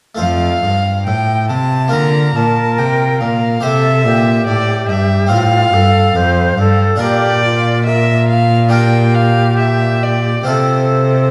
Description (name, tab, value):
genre	classical, baroque-style sonata movement with continuo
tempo	70 BPM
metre	4/4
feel	straight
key	F major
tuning	A4 = 439 Hz
part	harpsichord	accompaniment	0.1-11.3 s	F2 to C5	-23 LUFS	equal	none
part	warm violin	melody	0.2-11.3 s	C5 to Bb5	-20 LUFS	equal	none
part	rich cello	bass	0.2-11.3 s	F2 to D3	-16 LUFS	equal	none
part	concert flute	second line	1.9-11.3 s	F4 to C5	-21 LUFS	equal	none
room	wet recital hall reverb, RT60 1.4 s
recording	dark, warm production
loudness	-13 LUFS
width	mono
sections	0.2-11.3 A section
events	none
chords	0.2 F; 1.9 Bb; 3.6 C; 5.3 F; 7.0 Bb; 8.7 Gm/Bb; 10.5 F/C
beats	| 0.19 1.06 1.92 2.78 | 3.63 4.47 5.31 6.16 | 7.00 7.86 8.72 9.59 | 10.48